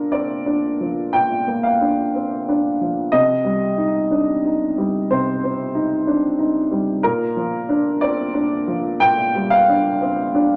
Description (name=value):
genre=neoclassical minimalist piano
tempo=61 BPM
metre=4/4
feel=rubato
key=unclear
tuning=A4 = 440 Hz
part: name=warm upright piano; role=solo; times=0.0-10.6 s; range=Bb2 to G5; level=-19 LUFS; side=equal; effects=none
room=wet club reverb, RT60 0.8 s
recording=none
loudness=-19 LUFS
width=mono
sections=0.0-10.6 A section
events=none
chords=0.0 Bb; 3.1 Cm; 7.0 Gm7/Bb